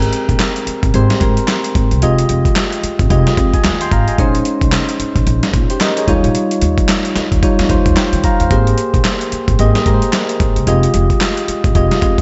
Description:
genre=R&B, new jack swing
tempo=111 BPM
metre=4/4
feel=swing 60% on 16ths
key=Ab major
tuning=A4 = 440 Hz
part: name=soft electric-piano-like synth keys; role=accompaniment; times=0.0-12.2 s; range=G3 to C6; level=-19 LUFS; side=equal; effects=chorus
part: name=upright bass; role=bass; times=0.0-12.1 s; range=F1 to Eb3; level=-18 LUFS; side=equal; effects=none
part: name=dusty soul sampler-style drum kit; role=drums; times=0.0-12.2 s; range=handclaps, hi-hat, kick drum, snare drum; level=-18 LUFS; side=equal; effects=overdrive
room=moderate concert hall reverb, RT60 1.9 s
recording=big arena sound, nothing above 7.9 kHz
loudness=-14 LUFS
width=mono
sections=0.0-12.2 A section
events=none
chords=0.0 Abmaj9; 2.0 Fm9; 4.2 Bbm11; 6.1 Eb9; 8.5 Abmaj9; 10.7 Fm9

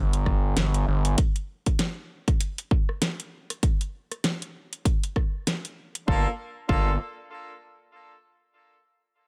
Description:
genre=glitch hop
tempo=98 BPM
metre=4/4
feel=swing 58% on 16ths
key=G minor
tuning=A4 = 442 Hz
part: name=gritty driven synth bass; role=bass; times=0.0-1.2, 6.1-7.0 s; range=G1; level=-26 LUFS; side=equal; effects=none
part: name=pop drum kit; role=drums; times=0.1-6.1 s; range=hi-hat, rim click, snare drum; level=-31 LUFS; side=equal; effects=none
part: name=electronic kick drum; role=drums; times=0.3-6.8 s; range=none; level=-26 LUFS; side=equal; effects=none
part: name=clear horn section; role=stabs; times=6.1-6.9 s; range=Bb3 to A4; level=-33 LUFS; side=equal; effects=sidechain pumping, delay
room=little or no reverb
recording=none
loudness=-26 LUFS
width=mono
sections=0.0-6.1 A section; 6.1-8.5 B section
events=none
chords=0.0 G5; 1.2 N.C.; 6.1 Gm7

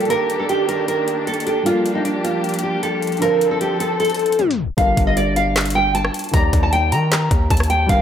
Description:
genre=hip hop, trap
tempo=154 BPM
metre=4/4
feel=half-time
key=G minor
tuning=A4 = 440 Hz
part: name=nylon-string guitar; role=melody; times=0.0-8.0 s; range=D4 to Bb5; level=-19 LUFS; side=equal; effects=lush chorus, low-pass filter, diffuse ambient delay
part: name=dark baby grand piano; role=accompaniment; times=0.0-8.0 s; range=D3 to D5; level=-26 LUFS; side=equal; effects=wide subtle chorus, low-pass filter
part: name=muted studio string section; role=sustained chords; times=0.0-4.8 s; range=Eb3 to A4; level=-25 LUFS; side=left 1 dB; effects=none
part: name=trap drum kit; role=drums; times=0.0-8.0 s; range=handclaps, hi-hat, kick drum, rim click, snare drum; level=-21 LUFS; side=equal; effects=none
part: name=distorted 808-style bass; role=bass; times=4.8-8.0 s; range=G1 to Eb3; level=-20 LUFS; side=equal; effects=distortion
room=wet plate reverb, RT60 1.6 s, small room ambience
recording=dreamy mix soaked in reverb, tape stop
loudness=-16 LUFS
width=side -9 dB against mid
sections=0.0-4.8 A section; 4.8-8.0 B section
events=tape stop 4.4-4.8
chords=0.1 Ebmaj7; 1.7 Gm7; 3.2 Dm7; 4.8 Gm7; 6.3 Ebmaj7

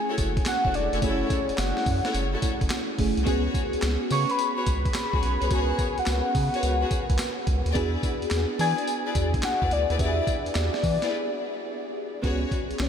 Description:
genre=R&B, new jack swing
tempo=107 BPM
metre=4/4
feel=swing 67% on 16ths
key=unclear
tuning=A4 = 440 Hz
part: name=warm velvety synth lead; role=melody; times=0.0-12.9 s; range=C#4 to C#6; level=-29 LUFS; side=left 1 dB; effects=chorus, tremolo, ping-pong delay
part: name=FM electric piano with soft pad layer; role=accompaniment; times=0.0-12.9 s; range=A3 to B4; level=-30 LUFS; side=right 1 dB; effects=chorus, phaser
part: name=rich chamber string section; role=stabs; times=0.1-12.5 s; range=E4 to D5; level=-33 LUFS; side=left 3 dB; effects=ping-pong delay
part: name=round analog bass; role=bass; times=0.2-12.9 s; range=E1 to E3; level=-27 LUFS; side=equal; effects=none
part: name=boom bap sampler-style drum kit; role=drums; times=0.2-12.9 s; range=handclaps, hi-hat, kick drum, snare drum, tambourine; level=-29 LUFS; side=equal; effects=none
room=moderate huge ambient reverb, RT60 8.2 s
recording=dreamy mix soaked in reverb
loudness=-23 LUFS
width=side -8 dB against mid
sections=0.0-12.2 A section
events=break 11.1-12.2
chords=0.0 F#m7; 3.3 C#7sus4; 7.8 E7; 12.2 C#7sus4

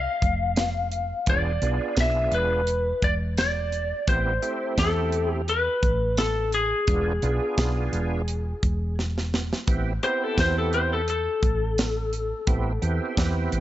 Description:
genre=straight-eighth soul blues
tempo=86 BPM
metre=4/4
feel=swing 54% on 16ths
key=A minor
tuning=A4 = 438 Hz
part: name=lightly driven lead guitar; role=melody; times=0.0-13.1 s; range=G#4 to F5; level=-26 LUFS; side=left 2 dB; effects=none
part: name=woody fretless electric bass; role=bass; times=0.0-13.6 s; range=E1 to E2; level=-27 LUFS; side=equal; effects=none
part: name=tight funk drum kit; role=drums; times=0.2-13.6 s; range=hi-hat, kick drum, snare drum, tambourine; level=-26 LUFS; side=equal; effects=none
part: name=tonewheel organ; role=accompaniment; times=1.3-13.6 s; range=A3 to G#4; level=-31 LUFS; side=right 4 dB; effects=slow rotary speaker, overdrive, chorus vibrato
room=light reverb, small room ambience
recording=nothing above 7.8 kHz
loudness=-22 LUFS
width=side -13 dB against mid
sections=0.0-9.7 A section; 9.7-13.6 B section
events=drum fill 9.0-9.7; lead electric guitar solo 9.7-13.6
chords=0.0 N.C.; 1.3 E7b9; 4.1 Am7; 6.9 E7b9; 9.7 Am7

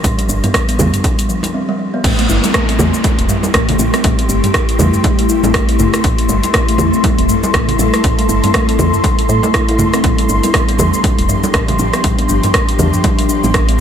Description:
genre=afro house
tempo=120 BPM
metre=4/4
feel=swing 58% on 16ths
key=A minor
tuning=A4 = 440 Hz
part: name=ethereal airy pad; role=sustained chords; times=0.0-13.8 s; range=F3 to C6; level=-18 LUFS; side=left 2 dB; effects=ensemble chorus, built-in reverb, vintage 12-bit sampler grit, sidechain pumping
part: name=kalimba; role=arpeggios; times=0.0-13.8 s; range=F3 to E4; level=-19 LUFS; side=left 1 dB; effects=sidechain pumping, diffuse ambient delay
part: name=woody FM bass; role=bass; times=0.0-13.8 s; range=E1 to A2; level=-18 LUFS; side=equal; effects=sidechain pumping
part: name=electronic kick drum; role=drums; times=0.0-13.7 s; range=none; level=-17 LUFS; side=equal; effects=none
part: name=house drum kit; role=drums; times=0.0-13.8 s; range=crash cymbal, hi-hat, rim click, shaker, toms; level=-18 LUFS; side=equal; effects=none
part: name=congas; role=percussion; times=0.0-13.5 s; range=none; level=-22 LUFS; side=right 3 dB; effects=none
part: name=downlifter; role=sound effects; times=2.0-6.0 s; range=none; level=-24 LUFS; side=right 1 dB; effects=none
room=moderate huge ambient reverb, RT60 7.5 s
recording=dreamy mix soaked in reverb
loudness=-11 LUFS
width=side -8 dB against mid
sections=0.0-2.0 A section; 2.0-13.8 B section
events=break 1.5-2.0; drop 2.0-13.8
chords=0.0 G7sus4; 2.0 Am7; 10.0 G7sus4

